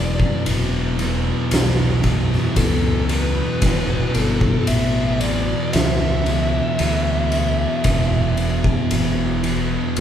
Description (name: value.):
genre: stoner and doom metal.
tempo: 57 BPM.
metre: 4/4.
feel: straight.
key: unclear.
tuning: A4 = 440 Hz.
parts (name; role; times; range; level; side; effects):
fuzz lead guitar; melody; 0.0-10.0 s; A4 to E5; -26 LUFS; equal; distortion.
deep rumbling drone; sustained chords; 0.0-10.0 s; E3 to B3; -34 LUFS; left 1 dB; none.
thick fuzz guitar; riff; 0.0-10.0 s; E2 to E3; -25 LUFS; left 4 dB; distortion.
thick fuzz guitar; riff; 0.0-10.0 s; E2 to E3; -23 LUFS; right 4 dB; distortion.
growling fingered electric bass; bass; 0.0-10.0 s; E1 to D2; -24 LUFS; equal; overdrive.
oversized low-tuned drum kit; drums; 0.2-10.0 s; kick drum, ride cymbal, snare drum; -22 LUFS; left 1 dB; none.
room: moderate large studio reverb, RT60 0.9 s.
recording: band playing live in one room.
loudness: -17 LUFS.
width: side -9 dB against mid.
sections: 0.0-10.0 A section.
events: none.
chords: 0.0 E5.